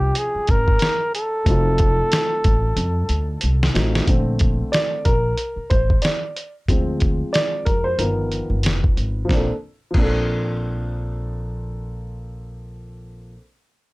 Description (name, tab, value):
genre	hip hop, jazz-hop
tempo	92 BPM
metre	4/4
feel	swing 57% on 16ths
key	Bb major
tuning	A4 = 440 Hz
part	trumpet with bucket mute	melody	0.0-3.4 s	G4 to Bb4	-22 LUFS	equal	none
part	dark upright piano	accompaniment	0.0-13.4 s	D3 to D5	-25 LUFS	equal	none
part	upright bass	bass	0.0-13.4 s	F1 to F2	-22 LUFS	equal	transformer saturation
part	dusty soul sampler-style drum kit	drums	0.2-10.1 s	crash cymbal, hi-hat, kick drum, snare drum	-20 LUFS	equal	none
room	little or no reverb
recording	dry, gritty hardware recording, cassette tape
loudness	-18 LUFS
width	side -22 dB against mid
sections	0.0-4.1 A section; 4.1-9.3 B section; 9.3-11.9 C section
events	drum fill 2.8-4.1; upright piano solo 4.1-9.3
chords	0.0 Dbmaj7; 1.5 F7b9; 4.1 Bbmaj7; 6.7 Dm7b5; 8.0 G7alt; 9.3 Bbmaj7